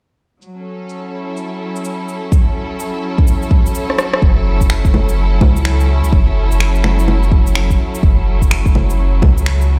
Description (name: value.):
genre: future garage.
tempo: 126 BPM.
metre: 4/4.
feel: swing 63% on 16ths.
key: F# minor.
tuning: A4 = 437 Hz.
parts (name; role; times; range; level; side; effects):
rich studio string section; sustained chords; 0.4-9.8 s; F#3 to A4; -24 LUFS; equal; sidechain pumping.
electronic shaker, rim click, finger snaps and bongos; drums; 0.4-9.7 s; none; -22 LUFS; equal; low-pass filter on perc, small room ambience, low-pass filter on snare.
electronic kick drum; drums; 2.3-9.3 s; none; -15 LUFS; equal; small room ambience.
soft dub sub bass; bass; 4.2-9.8 s; F#1 to C#2; -17 LUFS; equal; sidechain pumping.
room: little or no reverb.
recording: played on a big sound system in a bare room, stone room reverb.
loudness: -14 LUFS.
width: mono.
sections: 0.4-4.2 A section; 4.2-9.8 B section.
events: filter sweep on drum 0.4-4.2; drum fill 3.9-4.2.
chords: 0.4 F#m7.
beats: | 0.41 0.89 1.37 1.84 | 2.32 2.80 3.27 3.75 | 4.22 4.70 5.18 5.65 | 6.13 6.61 7.08 7.56 | 8.03 8.51 8.99 9.46.